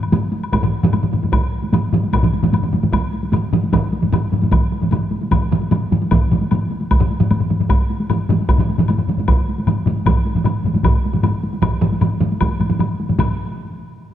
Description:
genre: japanese traditional, taiko drum ensemble.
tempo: 152 BPM.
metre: 4/4.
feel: straight.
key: none.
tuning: none.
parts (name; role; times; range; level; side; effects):
taiko ensemble; percussion; 0.0-13.4 s; none; -23 LUFS; equal; none.
woodblock; percussion; 0.0-13.4 s; none; -29 LUFS; left 5 dB; none.
solo taiko drums; percussion; 0.1-13.6 s; none; -20 LUFS; left 4 dB; none.
taiko ensemble; percussion; 0.1-13.6 s; none; -21 LUFS; right 4 dB; none.
taiko ensemble; percussion; 0.5-13.4 s; none; -20 LUFS; right 1 dB; none.
room: moderate concert hall reverb, RT60 2.3 s.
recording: close, detailed microphones.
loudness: -15 LUFS.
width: side -11 dB against mid.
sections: 0.5-13.2 A section.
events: speeding up 0.0-14.1.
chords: none.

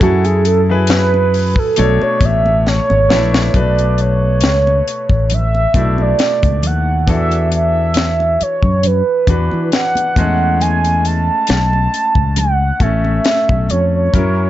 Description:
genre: R&B, neo-soul.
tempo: 68 BPM.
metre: 4/4.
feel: swing 54% on 16ths.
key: B dorian.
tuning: A4 = 442 Hz.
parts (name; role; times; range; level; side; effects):
mellow horn-like synth lead; melody; 0.0-14.5 s; F#4 to A5; -16 LUFS; right 3 dB; chorus.
clear grand piano; accompaniment; 0.0-14.5 s; B2 to C#5; -21 LUFS; left 4 dB; none.
fretless electric bass; bass; 0.0-14.5 s; G#1 to E3; -15 LUFS; left 1 dB; ensemble chorus.
tight funk drum kit; drums; 0.0-14.4 s; hi-hat, kick drum, snare drum; -16 LUFS; left 1 dB; none.
congas; percussion; 0.0-14.4 s; none; -28 LUFS; right 4 dB; none.
room: little or no reverb.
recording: nothing above 7.8 kHz.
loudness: -12 LUFS.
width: side -13 dB against mid.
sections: 0.0-3.5 A section; 3.5-14.5 B section.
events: soft synth lead solo 0.0-3.5; drum fill 2.7-3.5.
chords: 0.0 F#m9; 1.8 Bm9; 7.1 E9sus4; 10.2 Amaj9.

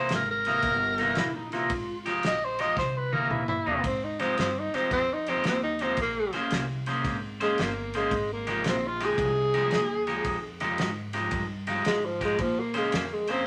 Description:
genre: electric blues shuffle.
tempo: 112 BPM.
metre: 4/4.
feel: swing 66% on 8ths.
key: F minor.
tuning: A4 = 440 Hz.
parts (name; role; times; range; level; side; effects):
breathy tenor saxophone; melody; 0.0-13.5 s; F3 to Eb5; -30 LUFS; equal; none.
electric guitar at the edge of break-up; riff; 0.0-13.5 s; C3 to C5; -32 LUFS; equal; none.
upright bass; bass; 0.0-13.4 s; G1 to Bb2; -38 LUFS; equal; none.
natural country drum kit; drums; 0.1-13.4 s; kick drum, ride cymbal, snare drum, toms; -36 LUFS; equal; none.
electric slide guitar; second line; 1.2-2.1 s; D#4 to F4; -37 LUFS; equal; none.
room: moderate studio reverb, RT60 0.8 s.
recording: none.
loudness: -28 LUFS.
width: mono.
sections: 0.0-3.8 A section; 3.8-13.5 B section.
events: drum fill 2.8-3.8; tenor saxophone solo 3.8-13.5.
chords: 0.0 C7#9; 1.7 Fm9; 2.8 C7#9; 3.8 Fm9; 6.0 Bbm9; 8.1 Fm9; 12.4 Bbm9.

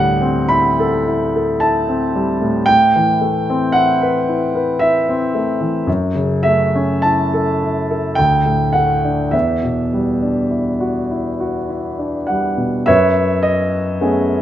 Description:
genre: classical, impressionist solo piano.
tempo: 50-57 BPM.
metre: 3/4.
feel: rubato.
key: unclear.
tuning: A4 = 440 Hz.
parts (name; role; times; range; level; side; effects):
clear concert grand piano; solo; 0.0-14.4 s; D2 to B5; -14 LUFS; equal; none.
room: light reverb.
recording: close, detailed microphones.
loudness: -14 LUFS.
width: side -11 dB against mid.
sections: 0.0-12.9 A section; 12.9-14.4 B section.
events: none.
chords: 0.0 D9sus4; 2.7 Am9; 5.9 F#m7; 8.2 D; 9.3 Em9; 12.9 F#m11.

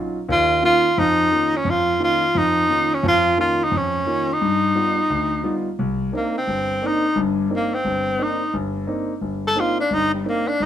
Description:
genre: jazz.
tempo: 174 BPM.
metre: 4/4.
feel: swing 62% on 8ths.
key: C minor from 5.8 s.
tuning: A4 = 438 Hz.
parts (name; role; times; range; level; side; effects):
warm grand piano; accompaniment; 0.0-10.7 s; G1 to F4; -23 LUFS; left 1 dB; none.
breathy tenor saxophone; melody; 0.3-10.7 s; G3 to A4; -18 LUFS; equal; none.
room: moderate club reverb, RT60 0.9 s.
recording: minimal, uncompressed stereo recording.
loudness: -18 LUFS.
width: side -10 dB against mid.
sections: 0.0-5.8 A section; 5.8-10.7 B section.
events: tenor saxophone solo 5.8-10.7.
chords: 0.3 Bbm/Eb; 4.4 G7b13; 5.8 Cm9.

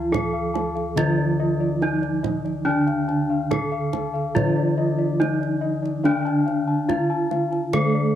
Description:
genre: Javanese gamelan.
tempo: 71 BPM.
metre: 4/4.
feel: straight.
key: unclear.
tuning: A4 = 439 Hz.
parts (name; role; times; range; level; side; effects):
gamelan-type bronze metallophone; melody; 0.0-8.2 s; D4 to A4-30c; -24 LUFS; equal; cassette tape.
gamelan-type bronze metallophone; accompaniment; 0.0-8.2 s; D3 to A3-30c; -28 LUFS; right 6 dB; cassette tape.
gamelan-type bossed gongs; arpeggios; 0.0-8.2 s; D5 to A5-30c; -30 LUFS; left 7 dB; cassette tape.
gamelan-type bossed gongs; bass; 0.0-8.2 s; D2 to F4-30c; -25 LUFS; left 2 dB; none.
kendang; percussion; 0.1-7.9 s; none; -29 LUFS; right 7 dB; none.
room: light reverb.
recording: home recording on cassette.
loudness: -20 LUFS.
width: side -11 dB against mid.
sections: 0.0-8.2 A section.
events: none.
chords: none.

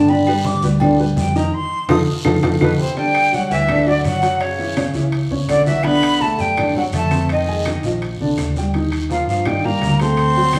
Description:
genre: Afro-Cuban jazz.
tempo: 166 BPM.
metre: 4/4.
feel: straight.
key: unclear.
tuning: A4 = 440 Hz.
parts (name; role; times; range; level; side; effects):
breathy bright jazz flute; melody; 0.0-10.6 s; B4 to Eb6; -22 LUFS; equal; none.
warm upright piano; accompaniment; 0.0-10.6 s; C#3 to C6; -22 LUFS; equal; none.
hollow-body short-scale fingered electric bass; bass; 0.0-10.6 s; Bb1 to G2; -24 LUFS; equal; none.
agogo bells and timbales; percussion; 0.1-10.6 s; none; -30 LUFS; equal; none.
congas; percussion; 0.1-10.6 s; none; -27 LUFS; equal; none.
guiro; percussion; 0.1-10.6 s; none; -37 LUFS; equal; none.
claves; percussion; 0.3-10.6 s; none; -37 LUFS; equal; none.
clear tenor saxophone; second line; 2.6-10.6 s; B2 to C4; -28 LUFS; equal; none.
room: wet large studio reverb, RT60 1.2 s.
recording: band playing live in one room, small room ambience.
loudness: -18 LUFS.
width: mono.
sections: 0.0-3.0 A section; 3.0-10.6 B section.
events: flute solo 0.0-3.0; drum fill 1.5-3.0; band accent 1.5-3.0.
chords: 0.1 G; 1.5 F7; 3.0 G5; 4.4 F#5; 5.9 Bm7; 7.3 Fm7; 8.0 Bb; 8.7 Ebmaj7.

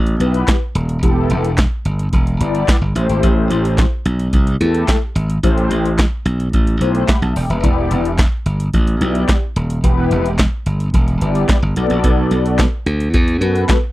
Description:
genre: early-eighties boogie funk.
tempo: 109 BPM.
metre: 4/4.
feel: straight.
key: E minor.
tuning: A4 = 442 Hz.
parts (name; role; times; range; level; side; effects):
glassy slap bass; bass; 0.0-13.6 s; D#1 to F#2; -16 LUFS; equal; none.
electro analog drum machine; drums; 0.1-13.8 s; handclaps, hi-hat, kick drum, snare drum; -16 LUFS; equal; none.
mellow synth brass; accompaniment; 0.2-13.8 s; A3 to B5; -19 LUFS; left 2 dB; chorus.
room: little or no reverb.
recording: dry, close 1970s-style studio recording.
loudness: -14 LUFS.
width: side -17 dB against mid.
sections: 0.0-13.9 A section.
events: none.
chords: 0.0 Em; 3.0 Am7; 7.6 Em7; 11.8 Bm7.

